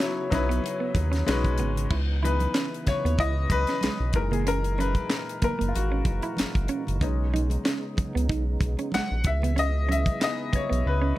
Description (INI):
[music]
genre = R&B, neo-soul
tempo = 94 BPM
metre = 4/4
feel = swing 54% on 16ths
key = C# dorian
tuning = A4 = 440 Hz
[part]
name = vibraphone with hard mallets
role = melody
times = 0.0-1.2 s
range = C#5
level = -34 LUFS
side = left 1 dB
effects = none
[part]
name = clean electric guitar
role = second line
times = 0.0-11.2 s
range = G#3 to E4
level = -31 LUFS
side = right 6 dB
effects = none
[part]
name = clear upright piano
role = accompaniment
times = 0.0-11.2 s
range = A#2 to F#5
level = -29 LUFS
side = left 4 dB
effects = none
[part]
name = percussive tonewheel organ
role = sustained chords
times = 0.0-11.2 s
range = A#2 to F#4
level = -38 LUFS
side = right 1 dB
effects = slow rotary speaker, overdrive, chorus vibrato
[part]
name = tight funk drum kit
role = drums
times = 0.0-10.8 s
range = crash cymbal, handclaps, hi-hat, kick drum, snare drum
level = -28 LUFS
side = equal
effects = none
[part]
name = congas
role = percussion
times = 0.0-11.2 s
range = none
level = -37 LUFS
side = right 2 dB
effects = none
[part]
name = round analog bass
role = bass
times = 0.3-11.1 s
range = F#1 to D#2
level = -26 LUFS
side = equal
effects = none
[sound]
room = little or no reverb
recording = none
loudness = -23 LUFS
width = side -16 dB against mid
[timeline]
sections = 0.0-1.9 A section; 1.9-11.2 B section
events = upright piano solo 1.9-11.2; drum fill 10.8-11.2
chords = 0.0 C#m11; 1.3 B69; 1.9 C#m9; 4.1 F#13; 7.0 B69; 9.2 C#m7